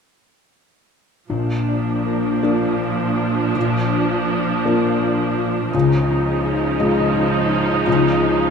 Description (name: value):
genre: cinematic, emotional film score for orchestra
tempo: 55 BPM (dotted quarters)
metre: 6/8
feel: uneven beats, rubato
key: Bb major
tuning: A4 = 440 Hz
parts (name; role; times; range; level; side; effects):
- felt-muted upright piano; accompaniment; 1.3-8.5 s; Bb1 to F4; -21 LUFS; left 2 dB; none
- warm studio viola section; accompaniment; 1.3-8.5 s; F3 to Eb4; -21 LUFS; right 3 dB; none
- concert harp; arpeggios; 1.3-8.5 s; Bb2 to Eb5; -23 LUFS; left 6 dB; none
- rich studio cello section; bass; 1.3-8.5 s; Bb2 to Db3; -25 LUFS; right 6 dB; none
room: moderate scoring stage reverb, RT60 1.9 s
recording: none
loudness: -16 LUFS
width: side -6 dB against mid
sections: 1.3-8.5 A section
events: none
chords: 1.3 Bb; 5.7 Dbadd9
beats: | 1.30 2.43 | 3.56 4.65 | 5.74 6.80 | 7.87